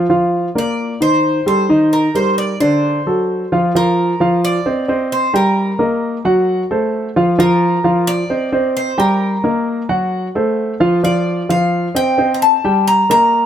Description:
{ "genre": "latin", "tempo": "132 BPM", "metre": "4/4", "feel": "straight", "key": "unclear", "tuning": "A4 = 440 Hz", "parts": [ { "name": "warm concert grand piano", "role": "arpeggios", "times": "0.0-13.5 s", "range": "D3 to G5", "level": "-14 LUFS", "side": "equal", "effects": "none" }, { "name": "Cuban tres", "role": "melody", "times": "0.6-13.5 s", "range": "Bb4 to Bb5", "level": "-17 LUFS", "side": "left 1 dB", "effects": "none" } ], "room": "light reverb", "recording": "close, detailed microphones", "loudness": "-13 LUFS", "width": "side -9 dB against mid", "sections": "0.0-3.7 A section; 3.7-13.5 B section", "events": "none", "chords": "0.1 Bb/F; 1.0 Am7b5; 1.9 Eb; 2.8 D7; 3.7 N.C.; 4.7 Cm9; 5.6 Eb; 6.5 F; 7.4 N.C.; 8.3 Cm9; 9.2 Eb; 10.1 F; 11.0 N.C.; 12.0 Am7b5; 12.9 Eb" }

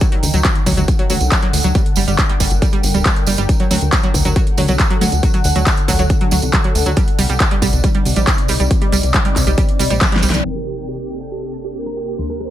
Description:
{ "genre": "uplifting trance", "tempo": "138 BPM", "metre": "4/4", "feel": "straight", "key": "G harmonic minor", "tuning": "A4 = 439 Hz", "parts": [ { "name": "shimmering ambient pad", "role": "sustained chords", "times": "0.0-12.5 s", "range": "C3 to G5", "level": "-24 LUFS", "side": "left 1 dB", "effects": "chorus, built-in reverb, phaser, sidechain pumping" }, { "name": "analog pluck", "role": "arpeggios", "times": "0.0-10.3 s", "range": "F#3 to G3", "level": "-21 LUFS", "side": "right 3 dB", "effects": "chorus, sidechain pumping, dub echo" }, { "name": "big-room dance drum kit", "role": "drums", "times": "0.0-12.5 s", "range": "handclaps, hi-hat, rim click, snare drum", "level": "-21 LUFS", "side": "equal", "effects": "overdrive, sidechain pumping on hats, low-pass filter on hats, studio ambience, low-pass filter on snare, sidechain pumping on cymbals, low-pass filter on cymbals" }, { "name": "electronic kick drum", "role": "drums", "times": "0.0-10.1 s", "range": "none", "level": "-15 LUFS", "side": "equal", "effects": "overdrive, studio ambience" }, { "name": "tambourine", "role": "percussion", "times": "0.0-10.4 s", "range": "none", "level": "-25 LUFS", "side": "right 6 dB", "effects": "none" }, { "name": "plucky analog bass", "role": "bass", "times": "0.2-12.5 s", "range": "D1 to Eb2", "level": "-18 LUFS", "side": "equal", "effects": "sidechain pumping" }, { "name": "big supersaw lead", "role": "melody", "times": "10.4-12.5 s", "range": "G4 to C6", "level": "-29 LUFS", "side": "right 5 dB", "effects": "sidechain pumping, low-pass filter, dub echo" }, { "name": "rich chamber violin section", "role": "second line", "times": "10.4-12.5 s", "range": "A4 to C5", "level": "-29 LUFS", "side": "right 3 dB", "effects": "ping-pong delay" }, { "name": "wide unison pluck", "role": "second line", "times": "10.4-12.5 s", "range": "G4 to C6", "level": "-36 LUFS", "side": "right 5 dB", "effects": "none" } ], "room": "little or no reverb", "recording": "low-pass filter", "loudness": "-13 LUFS", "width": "side -12 dB against mid", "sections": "0.0-10.4 A section; 10.4-12.5 B section", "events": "drum fill 10.0-10.4; band accent 10.3; filter sweep on drum 10.4-12.5; filter sweep on supersaw synth 10.4-12.5; filter sweep 10.4-12.5", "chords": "0.0 D; 1.8 Gm; 3.5 D; 7.0 Cmadd9; 10.4 Gm" }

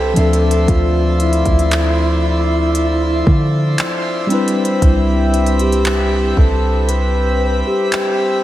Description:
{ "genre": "contemporary R&B", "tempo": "58 BPM", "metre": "4/4", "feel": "straight", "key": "C major", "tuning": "A4 = 440 Hz", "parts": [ { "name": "mellow horn-like synth lead", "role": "melody", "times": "0.0-8.4 s", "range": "E4 to B4", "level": "-20 LUFS", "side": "equal", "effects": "chorus, tape echo" }, { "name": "mellow tine electric piano", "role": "accompaniment", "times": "0.0-8.4 s", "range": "F3 to E5", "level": "-20 LUFS", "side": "left 2 dB", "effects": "medium stereo tremolo" }, { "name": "pedal harmonium", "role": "sustained chords", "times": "0.0-8.4 s", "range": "F3 to C6", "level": "-21 LUFS", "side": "equal", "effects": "none" }, { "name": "warm 808-style bass", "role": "bass", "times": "0.0-7.6 s", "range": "C2 to D3", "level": "-16 LUFS", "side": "equal", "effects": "none" }, { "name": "smooth R&B drum kit", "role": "drums", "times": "0.2-8.2 s", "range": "handclaps, hi-hat, kick drum", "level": "-20 LUFS", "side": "equal", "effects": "none" } ], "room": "moderate huge ambient reverb, RT60 6.9 s", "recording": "dreamy mix soaked in reverb", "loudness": "-13 LUFS", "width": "side -14 dB against mid", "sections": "0.0-8.4 A section", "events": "none", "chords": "0.2 Dm9; 4.3 Cmaj7" }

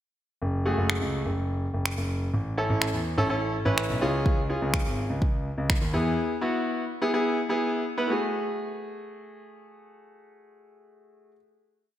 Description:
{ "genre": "dance-pop", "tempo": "125 BPM", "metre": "4/4", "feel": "straight", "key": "F# minor", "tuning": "A4 = 435 Hz", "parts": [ { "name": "dark concert grand piano", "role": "bass", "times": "0.4-6.1 s", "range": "F#1 to E2", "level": "-28 LUFS", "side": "equal", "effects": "sidechain pumping" }, { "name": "clear concert grand piano", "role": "accompaniment", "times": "0.7-11.4 s", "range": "A3 to B4", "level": "-27 LUFS", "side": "equal", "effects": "sidechain pumping" }, { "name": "deep house drum kit", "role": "drums", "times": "0.9-5.8 s", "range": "finger snaps, kick drum", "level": "-28 LUFS", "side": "equal", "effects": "none" } ], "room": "moderate lush hall reverb, RT60 1.8 s", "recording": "bright 1980s-style digital production", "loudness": "-24 LUFS", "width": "side -12 dB against mid", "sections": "0.4-8.1 verse; 8.1-11.9 final chord", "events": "none", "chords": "0.4 F#madd9; 2.3 A; 4.0 C#; 5.9 E; 8.1 F#madd9" }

